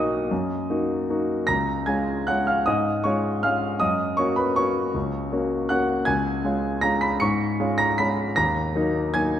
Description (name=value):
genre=classical, piano waltz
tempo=156 BPM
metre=3/4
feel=uneven beats, rubato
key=unclear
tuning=A4 = 441 Hz
part: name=warm concert grand piano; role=solo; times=0.0-9.4 s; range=B1 to C#7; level=-21 LUFS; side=equal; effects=none
room=wet concert hall reverb, RT60 2.3 s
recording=none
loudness=-21 LUFS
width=side -10 dB against mid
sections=0.0-9.4 A section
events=none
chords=0.0 Bmaj7; 1.5 C#; 3.8 F#; 6.1 C#; 8.4 D#m